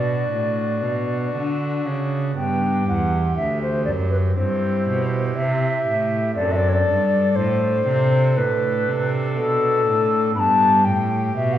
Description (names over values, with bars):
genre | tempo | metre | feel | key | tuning
classical, baroque-style sonata movement with continuo | 60 BPM | 4/4 | straight | G major | A4 = 440 Hz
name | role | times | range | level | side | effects
mellow wooden flute | melody | 0.0-11.6 s | A4 to B5 | -21 LUFS | left 2 dB | none
pipe organ, foundations | accompaniment | 0.0-11.6 s | D2 to A4 | -25 LUFS | right 1 dB | none
rich cello | bass | 0.0-11.6 s | D2 to D3 | -22 LUFS | right 1 dB | none
room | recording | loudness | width
wet recital hall reverb, RT60 1.4 s | heard from further back in the room | -18 LUFS | side -11 dB against mid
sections
0.0-2.4 A section; 2.4-11.6 A section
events
none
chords
0.0 D; 2.4 G; 4.4 C/G; 6.4 D7/F#; 10.4 G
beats
0.30 1.33 | 2.37 3.37 4.37 5.37 | 6.37 7.37 8.38 9.37 | 10.36 11.36